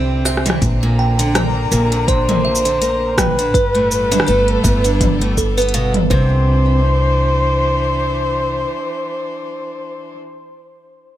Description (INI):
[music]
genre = folktronica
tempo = 82 BPM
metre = 4/4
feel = swing 56% on 16ths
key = C mixolydian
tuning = A4 = 440 Hz
[part]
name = mellow flugelhorn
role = melody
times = 0.0-10.2 s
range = G4 to C5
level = -20 LUFS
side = equal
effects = digital delay
[part]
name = music box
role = second line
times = 0.0-6.8 s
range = A4 to G5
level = -23 LUFS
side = right 2 dB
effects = digital delay
[part]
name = clear string quartet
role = sustained chords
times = 0.0-10.2 s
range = D3 to Bb5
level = -26 LUFS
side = left 1 dB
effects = none
[part]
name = picked twelve-string acoustic guitar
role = arpeggios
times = 0.0-6.8 s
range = A2 to C4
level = -22 LUFS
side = right 1 dB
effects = none
[part]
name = upright bass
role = bass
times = 0.0-8.6 s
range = G1 to C2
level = -18 LUFS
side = equal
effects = none
[part]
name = organic electronic drum kit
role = drums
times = 0.3-6.1 s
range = hi-hat, rim click, shaker, toms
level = -20 LUFS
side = equal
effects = none
[part]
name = electronic kick drum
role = drums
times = 0.6-6.3 s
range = none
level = -19 LUFS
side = equal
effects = none
[sound]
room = light reverb, small room reverb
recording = none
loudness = -13 LUFS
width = side -12 dB against mid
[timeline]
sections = 0.0-6.5 A section; 6.5-9.4 B section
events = none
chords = 0.0 Cadd9; 0.6 Bbadd9; 3.5 Gadd9; 6.1 Cadd9